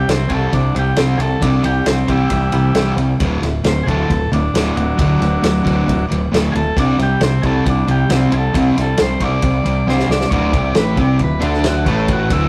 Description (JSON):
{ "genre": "garage rock duo or trio", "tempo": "135 BPM", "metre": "4/4", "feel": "straight", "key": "D mixolydian", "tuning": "A4 = 441 Hz", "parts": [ { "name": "overdriven combo organ", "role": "melody", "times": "0.0-12.5 s", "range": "E3 to D5", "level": "-24 LUFS", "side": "equal", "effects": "spring reverb" }, { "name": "fuzz guitar", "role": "riff", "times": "0.0-12.5 s", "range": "D2 to D4", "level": "-21 LUFS", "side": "equal", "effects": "distortion" }, { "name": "growling picked electric bass", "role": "bass", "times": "0.0-12.5 s", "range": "D1 to D2", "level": "-21 LUFS", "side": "equal", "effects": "overdrive" }, { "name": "vintage drum kit", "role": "drums", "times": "0.1-12.4 s", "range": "kick drum, ride cymbal, snare drum", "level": "-23 LUFS", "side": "equal", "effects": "none" } ], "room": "moderate studio reverb, RT60 0.6 s", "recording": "rough rehearsal-room recording, warm saturation", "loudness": "-16 LUFS", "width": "mono", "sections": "0.0-10.3 A section; 10.3-12.5 B section", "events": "drum fill 9.9-10.3", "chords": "0.0 C; 3.2 D; 6.8 C5; 10.3 D5" }